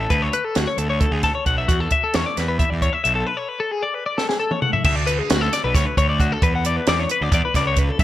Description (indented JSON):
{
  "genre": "math rock and midwest emo",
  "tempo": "266 BPM (eighths)",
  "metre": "7/8",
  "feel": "straight",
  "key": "D lydian",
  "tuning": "A4 = 440 Hz",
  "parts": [
    { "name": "twelve-string electric guitar", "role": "arpeggios", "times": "0.0-8.0 s", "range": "F#4 to F#5", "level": "-21 LUFS", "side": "left 4 dB", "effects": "spring reverb" },
    { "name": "fuzz picked electric bass", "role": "bass", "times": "0.0-8.0 s", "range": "B1 to F#2", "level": "-23 LUFS", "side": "right 1 dB", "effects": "overdrive" },
    { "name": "compact cocktail drum kit", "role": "drums", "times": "0.1-8.0 s", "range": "crash cymbal, hi-hat, kick drum, snare drum, toms", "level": "-21 LUFS", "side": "right 1 dB", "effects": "none" }
  ],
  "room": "light reverb",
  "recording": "none",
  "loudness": "-18 LUFS",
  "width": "side -13 dB against mid",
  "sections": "0.0-4.8 A section; 4.8-8.0 B section",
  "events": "break 3.3-4.8; drum fill 4.2-4.8",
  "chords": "0.0 Dmaj7; 6.4 E7(no3)"
}